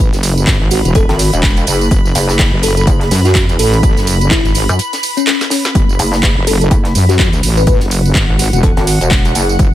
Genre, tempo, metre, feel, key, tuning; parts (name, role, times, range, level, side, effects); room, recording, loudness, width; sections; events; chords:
bass house; 125 BPM; 4/4; swing 58% on 16ths; F# minor; A4 = 440 Hz
bell-like FM electric piano; melody; 0.0-8.8 s; C#4 to B4; -19 LUFS; left 2 dB; chorus, phaser, tape echo
wobble bass; bass; 0.0-9.7 s; E1 to F#2; -13 LUFS; equal; chorus, tube saturation, sidechain pumping
tight funk drum kit; drums; 0.0-9.7 s; hi-hat, snare drum; -26 LUFS; left 3 dB; high-pass filter on hats, high-pass filter on snare, high-pass filter on room
granular cloud pad; texture; 0.1-9.7 s; F#5 to B5; -23 LUFS; equal; built-in reverb, sidechain pumping
garage drum kit; drums; 0.1-9.7 s; handclaps, hi-hat, snare drum, tambourine; -18 LUFS; right 2 dB; overdrive
electronic kick drum; drums; 0.5-9.7 s; -13 LUFS; equal
pulsing pluck wobble bass; bass; 1.1-9.6 s; E1 to F#2; -14 LUFS; equal; chorus, overdrive, sidechain pumping
digital ambience; -10 LUFS; side -13 dB against mid
0.0-9.7 A section
break 4.8-5.8; drum fill 5.3-5.8